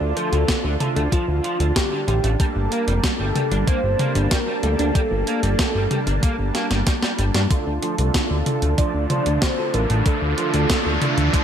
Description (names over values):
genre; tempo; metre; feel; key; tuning
synthwave; 94 BPM; 4/4; straight; unclear; A4 = 440 Hz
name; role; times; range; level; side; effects
warm velvety synth lead; melody; 0.0-11.3 s; F4 to D5; -27 LUFS; equal; chorus, tremolo, tape echo
soft supersaw; sustained chords; 0.0-11.4 s; D3 to A5; -27 LUFS; right 1 dB; sidechain pumping
fat analog bass; bass; 0.0-11.3 s; F1 to G2; -21 LUFS; equal; sidechain pumping
electric guitar at the edge of break-up; riff; 0.2-11.4 s; D3 to D4; -30 LUFS; right 2 dB; ensemble chorus, low-pass filter, ping-pong delay
clean 12-bit digital drum machine; drums; 0.2-11.4 s; hi-hat, snare drum, toms; -24 LUFS; equal; overdrive, gated reverb
electronic kick drum; drums; 0.5-11.4 s; none; -21 LUFS; equal; overdrive
mellow synth brass; stabs; 7.5-11.4 s; A3 to D5; -28 LUFS; right 4 dB; chorus
riser; sound effects; 8.7-11.4 s; none; -27 LUFS; left 1 dB; none
room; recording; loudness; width
light reverb; none; -18 LUFS; side -8 dB against mid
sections
0.0-7.5 A section; 7.5-11.4 B section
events
drum fill 6.5-7.5; filter sweep on clean electric guitar 7.5-11.4; riser 8.7-11.4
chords
0.0 Dm; 2.4 Gmadd9; 7.5 Dm